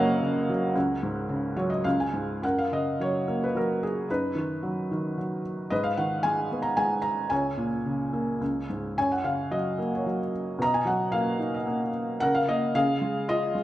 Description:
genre	classical, lyrical solo piano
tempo	111 BPM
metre	3/4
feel	rubato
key	F# major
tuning	A4 = 441 Hz
part	felt-muted upright piano	solo	0.0-13.6 s	F#1 to A#5	-24 LUFS	equal	none
room	moderate recital hall reverb, RT60 1.3 s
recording	minimal, uncompressed stereo recording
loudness	-25 LUFS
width	side -14 dB against mid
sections	0.0-2.4 A section; 2.4-13.6 B section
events	felt piano fill 1.3-2.4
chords	0.0 F#; 0.8 C#sus4; 1.9 C#5; 2.4 F#; 4.1 B/F#; 5.7 G#m; 7.3 A#m7/C#; 8.4 C#5; 9.0 F#; 10.6 Bmaj7; 12.2 C#69; 12.7 C#add9

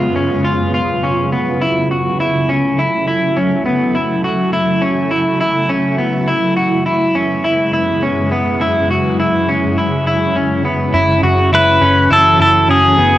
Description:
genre	dream pop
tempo	103 BPM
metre	4/4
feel	straight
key	F# minor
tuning	A4 = 440 Hz
part	granular cloud pad	sustained chords	0.0-13.2 s	F#2 to F#4	-17 LUFS	right 1 dB	built-in reverb, cassette tape
part	clean electric guitar	arpeggios	0.0-13.2 s	B3 to F#4	-16 LUFS	left 1 dB	lush chorus, cassette tape, tape echo
part	vintage muted picked electric bass	bass	10.9-13.2 s	F#1	-16 LUFS	equal	transformer saturation
part	pedal steel guitar	melody	11.5-13.2 s	G#4 to B4	-10 LUFS	equal	cassette tape
room	wet small room reverb, RT60 0.5 s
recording	home recording on cassette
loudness	-12 LUFS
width	side -14 dB against mid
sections	0.0-10.9 A section; 10.9-13.2 B section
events	none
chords	0.0 C#7/F#; 1.6 F#m7; 6.3 C#m7/F#; 10.9 F#m7

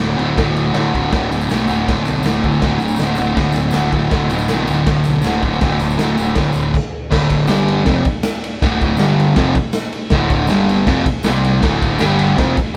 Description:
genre	garage rock duo or trio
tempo	160 BPM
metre	4/4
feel	straight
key	unclear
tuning	A4 = 441 Hz
part	fuzz guitar	riff	0.0-12.6 s	D2 to C4	-18 LUFS	equal	distortion
part	fuzz picked electric bass	bass	0.0-12.6 s	D1 to C2	-25 LUFS	equal	overdrive
part	raw garage drum kit	drums	0.0-12.7 s	crash cymbal, kick drum, ride cymbal, snare drum	-21 LUFS	equal	none
part	tambourine	percussion	1.1-12.1 s	none	-42 LUFS	equal	none
room	light reverb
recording	band playing live in one room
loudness	-16 LUFS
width	mono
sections	0.0-7.1 A section; 7.1-12.8 B section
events	stop 6.7-7.1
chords	0.0 D5; 7.5 G5; 7.9 D5; 9.0 G5; 9.4 D5; 10.5 G5; 10.9 F5; 11.2 C5; 11.6 D5; 12.0 G5; 12.4 F5

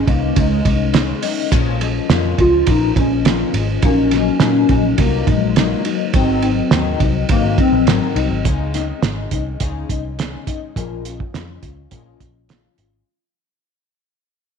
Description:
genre	indie pop, bedroom pop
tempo	104 BPM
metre	4/4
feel	straight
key	Db major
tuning	A4 = 440 Hz
part	warbly nostalgic lead	melody	0.0-8.1 s	Ab3 to F4	-18 LUFS	left 1 dB	ensemble chorus, tape echo
part	nylon-string guitar	accompaniment	0.0-13.1 s	Ab2 to F4	-22 LUFS	left 13 dB	analog chorus, warbly pitch drift
part	vintage muted picked electric bass	bass	0.1-13.0 s	Ab1 to Bb2	-21 LUFS	equal	none
part	cloth-damped thuddy drum kit	drums	0.1-12.9 s	hi-hat, kick drum, ride cymbal, snare drum	-19 LUFS	right 3 dB	none
room	light reverb, small room ambience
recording	1960s-style stereo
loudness	-14 LUFS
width	side -6 dB against mid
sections	0.0-8.4 A section; 8.4-13.1 B section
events	fade-out 8.4-13.1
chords	0.0 Dbsus2; 1.5 Bbm7; 3.8 Ebm/Bb; 6.1 Ab7; 8.4 Dbsus2; 10.8 Bbm7

